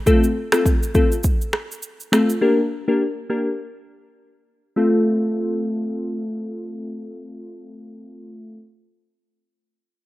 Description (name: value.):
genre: afrobeats.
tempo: 102 BPM.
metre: 4/4.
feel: swing 58% on 16ths.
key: F major.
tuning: A4 = 440 Hz.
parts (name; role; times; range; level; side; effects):
glassy digital keys; accompaniment; 0.1-8.6 s; A3 to Bb4; -20 LUFS; left 1 dB; chorus, low-pass filter.
afro-pop drum kit; drums; 0.1-2.4 s; finger snaps, kick drum, rim click, shaker; -19 LUFS; equal; none.
room: light reverb, digital ambience.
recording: rough home demo mix.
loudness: -18 LUFS.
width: side -16 dB against mid.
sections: 0.0-4.8 A section; 4.8-7.1 B section.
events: filter sweep on synth keys 0.0-4.8.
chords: 0.1 F; 2.4 Gm; 4.8 F.